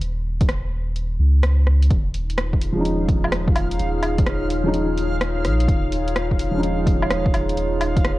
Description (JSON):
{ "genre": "future garage", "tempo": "127 BPM", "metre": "4/4", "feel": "swing 66% on 16ths", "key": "unclear", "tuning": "A4 = 440 Hz", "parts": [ { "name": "warm sub bass", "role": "bass", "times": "0.0-8.2 s", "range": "Eb1 to Db2", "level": "-21 LUFS", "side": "equal", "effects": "sidechain pumping" }, { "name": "deep house drum kit", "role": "drums", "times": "0.0-8.2 s", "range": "hi-hat, rim click, woodblock", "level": "-27 LUFS", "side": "equal", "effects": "overdrive, studio reverb" }, { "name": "electronic kick drum", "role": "drums", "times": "0.4-8.0 s", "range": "none", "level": "-20 LUFS", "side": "equal", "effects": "overdrive, studio reverb" }, { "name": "backwards swelling texture", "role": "texture", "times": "3.1-8.2 s", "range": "F5", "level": "-32 LUFS", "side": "right 1 dB", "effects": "built-in reverb" }, { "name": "warbly tape-like pad", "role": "sustained chords", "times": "2.3-8.2 s", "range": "Eb4 to Db5", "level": "-26 LUFS", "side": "left 1 dB", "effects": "chorus, built-in reverb, sidechain pumping" }, { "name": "felt-muted upright piano", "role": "accompaniment", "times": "2.7-8.2 s", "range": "F3 to Eb4", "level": "-26 LUFS", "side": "equal", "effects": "sidechain pumping, analog delay" } ], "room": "light reverb", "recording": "cassette tape", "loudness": "-18 LUFS", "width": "side -17 dB against mid", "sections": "0.0-8.2 A section", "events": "none", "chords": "0.0 Eb7(no3); 1.9 Dbadd9/Eb", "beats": "| 0.01 0.49 0.96 1.43 | 1.90 2.38 2.85 3.32 | 3.79 4.27 4.74 5.21 | 5.68 6.16 6.63 7.10 | 7.57 8.04" }